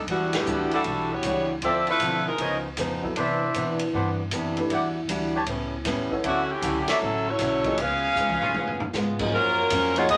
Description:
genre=jazz, big band swing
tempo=156 BPM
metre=4/4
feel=swing 66% on 8ths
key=unclear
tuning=A4 = 439 Hz
part: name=edgy saxophone section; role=melody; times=0.0-2.6, 6.3-10.2 s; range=D3 to E#5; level=-26 LUFS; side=equal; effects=none
part: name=upright bass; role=bass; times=0.0-10.2 s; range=A1 to C3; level=-38 LUFS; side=equal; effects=none
part: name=picked steel-string acoustic guitar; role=accompaniment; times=0.1-10.2 s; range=F#2 to F#4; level=-31 LUFS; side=equal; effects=none
part: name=swinging big-band drum kit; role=drums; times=0.1-10.2 s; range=crash cymbal, hi-hat, kick drum, ride cymbal, snare drum, toms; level=-36 LUFS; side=equal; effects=none
part: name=warm baby grand piano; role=accompaniment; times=0.3-10.2 s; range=F#2 to C#5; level=-33 LUFS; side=equal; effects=none
part: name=warm trumpet section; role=stabs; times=0.7-10.1 s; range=C4 to A5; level=-30 LUFS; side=equal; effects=none
room=wet small room reverb, RT60 0.5 s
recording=none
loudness=-25 LUFS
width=mono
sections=0.0-9.3 A section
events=band accent 0.3, 6.8; drum fill 8.2-8.9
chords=0.1 Em9; 1.6 Dm9; 2.4 C#9; 3.2 Cmaj9; 4.7 Em9; 5.5 A9; 6.2 Dmaj9; 7.8 C#7; 9.3 F#maj7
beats=| 0.08 0.47 0.85 1.24 | 1.62 2.01 2.39 2.78 | 3.16 3.55 3.93 4.32 | 4.70 5.09 5.47 5.86 | 6.24 6.63 7.01 7.40 | 7.78 8.17 8.55 8.94 | 9.32 9.71 10.09

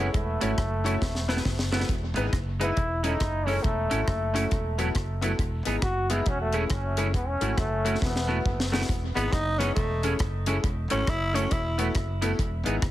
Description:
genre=ska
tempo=137 BPM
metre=4/4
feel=swing 62% on 8ths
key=E major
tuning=A4 = 439 Hz
part: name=bright trombone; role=melody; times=0.0-8.7 s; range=A3 to F#4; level=-31 LUFS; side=equal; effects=dub echo
part: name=electric guitar at the edge of break-up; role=accompaniment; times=0.0-12.7 s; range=F#3 to E4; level=-32 LUFS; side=right 5 dB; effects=none
part: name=bright upright piano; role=stabs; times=0.0-12.8 s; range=A3 to C#5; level=-34 LUFS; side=left 5 dB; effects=none
part: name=fingered electric bass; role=bass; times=0.0-12.9 s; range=E1 to G#1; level=-29 LUFS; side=equal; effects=none
part: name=deep reggae drum kit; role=drums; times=0.1-12.9 s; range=hi-hat, kick drum, rim click, snare drum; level=-29 LUFS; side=equal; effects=dub echo
part: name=growling tenor saxophone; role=melody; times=9.2-11.9 s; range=A3 to E4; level=-30 LUFS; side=equal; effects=dub echo
room=light reverb, small room ambience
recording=heavily compressed radio sound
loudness=-24 LUFS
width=side -14 dB against mid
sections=0.0-8.9 A section; 8.9-12.9 B section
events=drum fill 1.0-1.9, 8.0-8.9; tenor saxophone solo 8.9-12.9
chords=0.0 Amaj7/E; 1.0 B7sus4/E; 1.9 Emaj7; 2.8 Amaj7/E; 4.5 B7sus4/E; 5.4 Emaj7; 6.3 Amaj7/E; 8.0 B7sus4/E; 8.9 Emaj7; 9.8 Amaj7/E; 11.5 B7sus4/E; 12.4 Emaj7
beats=| 0.14 0.58 1.02 1.46 | 1.89 2.33 2.77 3.20 | 3.64 4.08 4.51 4.95 | 5.39 5.83 6.26 6.70 | 7.14 7.58 8.01 8.45 | 8.89 9.32 9.76 10.20 | 10.64 11.07 11.51 11.95 | 12.38 12.82

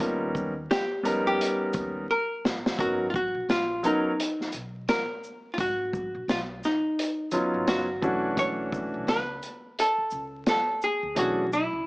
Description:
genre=hip hop, jazz-hop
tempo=86 BPM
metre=4/4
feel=swing 60% on 16ths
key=unclear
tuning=A4 = 439 Hz
part: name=archtop guitar, miked and amplified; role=melody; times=0.0-11.9 s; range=D#4 to C#5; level=-27 LUFS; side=equal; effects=none
part: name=dark baby grand piano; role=accompaniment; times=0.0-11.4 s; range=E3 to A#4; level=-27 LUFS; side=equal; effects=none
part: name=upright bass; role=bass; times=0.0-11.8 s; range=F#1 to E#2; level=-41 LUFS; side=equal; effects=none
part: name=crunchy breakbeat drum kit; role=drums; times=0.0-11.7 s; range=hi-hat, kick drum, shaker, snare drum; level=-30 LUFS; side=equal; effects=none
room=light reverb, small room ambience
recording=vinyl crackle, small speaker sound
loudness=-25 LUFS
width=side -24 dB against mid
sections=0.0-2.8 A section; 2.8-11.9 B section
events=drum fill 2.1-2.8; kick muted 11.2-11.9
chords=0.0 D#7b13; 2.8 G#m11; 8.0 Bm11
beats=| 0.00 0.69 1.39 2.09 | 2.79 3.49 4.18 4.88 | 5.58 6.28 6.97 7.67 | 8.37 9.07 9.77 10.46 | 11.16 11.86

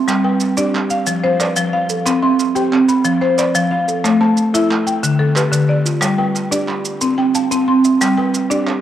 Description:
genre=southern african traditional, mbira-style interlocking cycle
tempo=121 BPM (dotted quarters)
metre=12/8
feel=straight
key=G mixolydian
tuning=A4 = 440 Hz
part: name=buzzing marimba with hard mallets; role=arpeggios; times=0.0-8.8 s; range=D3 to C6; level=-16 LUFS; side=left 3 dB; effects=none
part: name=kalimba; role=arpeggios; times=0.0-8.8 s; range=D3 to F5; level=-18 LUFS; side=right 5 dB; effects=none
part: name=group handclap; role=percussion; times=0.1-8.8 s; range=none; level=-27 LUFS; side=right 3 dB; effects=none
part: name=maracas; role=percussion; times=0.1-8.7 s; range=none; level=-24 LUFS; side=right 4 dB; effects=none
room=wet spring reverb, RT60 2.5 s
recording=home recording on cassette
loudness=-13 LUFS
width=side -11 dB against mid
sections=0.0-8.8 A section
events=none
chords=0.1 G; 1.1 F; 2.1 C; 3.1 F; 4.0 Am; 5.0 Dm; 6.0 G; 7.0 C; 8.0 G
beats=| 0.08 0.58 1.07 1.57 | 2.06 2.56 3.05 3.55 | 4.04 4.54 5.03 5.53 | 6.02 6.52 7.02 7.51 | 8.01 8.51

